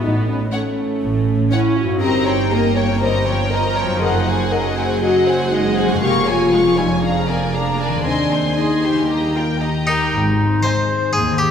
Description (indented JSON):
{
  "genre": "cinematic, playful, whimsical film cue",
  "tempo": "119 BPM",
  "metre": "4/4",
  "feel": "straight",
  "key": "Ab major",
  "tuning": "A4 = 440 Hz",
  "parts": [
    { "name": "rich studio viola section", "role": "accompaniment", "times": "0.0-10.7 s", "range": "F3 to Ab4", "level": "-24 LUFS", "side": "right 2 dB", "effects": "none" },
    { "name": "dark French horn section", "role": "sustained chords", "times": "0.0-9.6 s", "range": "Bb3 to Db5", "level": "-20 LUFS", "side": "left 2 dB", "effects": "none" },
    { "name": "concert harp", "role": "arpeggios", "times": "0.0-11.5 s", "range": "F2 to Bb4", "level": "-26 LUFS", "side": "left 4 dB", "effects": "none" },
    { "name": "dark chamber cello section", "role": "bass", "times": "0.0-11.5 s", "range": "Eb2 to A2", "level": "-25 LUFS", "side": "right 3 dB", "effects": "none" },
    { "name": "dark symphonic double bass section", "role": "bass", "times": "0.0-11.5 s", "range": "F1 to Eb2", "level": "-24 LUFS", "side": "right 3 dB", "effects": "none" },
    { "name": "warm symphonic violin section", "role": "melody", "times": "0.5-10.7 s", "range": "F#5 to Db6", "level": "-25 LUFS", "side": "left 2 dB", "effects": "none" },
    { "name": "warm chamber violin section", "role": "second line", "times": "0.5-10.7 s", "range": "G4 to C6", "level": "-24 LUFS", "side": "left 2 dB", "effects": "none" },
    { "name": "harpsichord", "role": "melody", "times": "9.9-11.5 s", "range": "Eb4 to C5", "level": "-20 LUFS", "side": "equal", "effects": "none" },
    { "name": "clear clarinet", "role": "second line", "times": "9.9-11.5 s", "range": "Eb4 to C5", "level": "-21 LUFS", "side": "left 2 dB", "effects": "none" }
  ],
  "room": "wet concert hall reverb, RT60 2.3 s",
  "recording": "recorded in a church or concert hall",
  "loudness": "-15 LUFS",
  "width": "side -8 dB against mid",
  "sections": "0.0-10.1 A section; 10.1-11.5 B section",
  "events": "none",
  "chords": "0.0 F#m/A; 2.0 Eb7/G; 4.0 Ab7/Gb; 6.0 Db/F; 7.0 Bb7/F; 8.1 Ab/Eb; 9.1 Eb; 10.1 Ab"
}